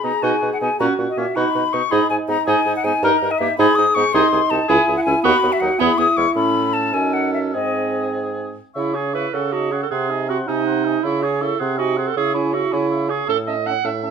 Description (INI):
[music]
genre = quick classical-period movement for wind quintet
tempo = 107 BPM (dotted quarters)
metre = 6/8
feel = rubato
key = B major, C# minor from 4.1 s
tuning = A4 = 445 Hz
[part]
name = hollow concert flute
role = melody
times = 0.0-14.1 s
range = D#5 to D#6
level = -21 LUFS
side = left 6 dB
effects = none
[part]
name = mellow oboe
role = second line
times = 0.0-14.1 s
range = C#4 to F#5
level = -25 LUFS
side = left 1 dB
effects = none
[part]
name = warm French horn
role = accompaniment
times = 0.0-14.1 s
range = B#3 to G#4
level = -25 LUFS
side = right 2 dB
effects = none
[part]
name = warm clarinet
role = accompaniment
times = 0.0-14.1 s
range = F#3 to F#5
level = -22 LUFS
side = right 8 dB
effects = none
[part]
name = mellow bassoon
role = bass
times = 0.0-14.1 s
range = B#1 to C#3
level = -24 LUFS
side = right 2 dB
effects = none
[sound]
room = moderate large studio reverb, RT60 0.8 s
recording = minimal, uncompressed stereo recording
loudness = -16 LUFS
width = side -6 dB against mid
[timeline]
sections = 0.0-8.8 A section; 8.8-14.1 B section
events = none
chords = 0.0 B; 0.8 F#/A#; 1.4 B; 1.9 G#m; 3.0 D#; 3.6 G#m; 4.1 G#/B#; 4.7 C#m; 5.2 B/D#; 5.8 E; 6.4 A; 6.9 D#m7b5/F#; 7.5 G#; 8.8 C#m; 9.3 D#m7b5/C#; 9.9 G#7/B#; 11.0 C#m; 11.6 G#7/B#; 12.2 C#m; 13.3 A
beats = 0.23 | 0.80 1.36 | 1.91 2.47 | 3.03 3.58 | 4.14 4.69 | 5.24 5.80 | 6.36 6.94 | 7.55 8.16 | 8.77 9.34 | 9.91 10.48 | 11.04 11.60 | 12.16 12.72 | 13.28 13.84